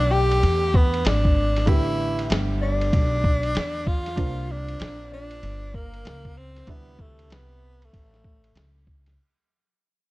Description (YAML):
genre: hip hop, jazz-hop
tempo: 96 BPM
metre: 4/4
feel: swing 63% on 16ths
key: unclear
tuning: A4 = 440 Hz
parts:
  - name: breathy tenor saxophone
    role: melody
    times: 0.0-8.9 s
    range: A3 to G4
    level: -26 LUFS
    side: equal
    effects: none
  - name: mellow electric guitar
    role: second line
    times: 0.0-8.9 s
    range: A4 to G5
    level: -35 LUFS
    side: left 6 dB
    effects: none
  - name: warm upright piano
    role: accompaniment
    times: 0.0-9.1 s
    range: C3 to G4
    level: -34 LUFS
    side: right 3 dB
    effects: none
  - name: upright bass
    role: bass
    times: 0.0-9.1 s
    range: G1 to E2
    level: -25 LUFS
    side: equal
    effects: none
  - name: lo-fi sampler-style drum kit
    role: drums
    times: 0.3-9.2 s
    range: hi-hat, kick drum, ride cymbal, snare drum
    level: -24 LUFS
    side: equal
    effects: vintage 12-bit sampler grit
room: studio ambience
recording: dark, warm production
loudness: -20 LUFS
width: side -19 dB against mid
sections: 0.0-9.2 A section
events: fade-out 0.0-9.2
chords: 0.0 A9sus4; 4.2 C9sus4; 6.7 D9sus4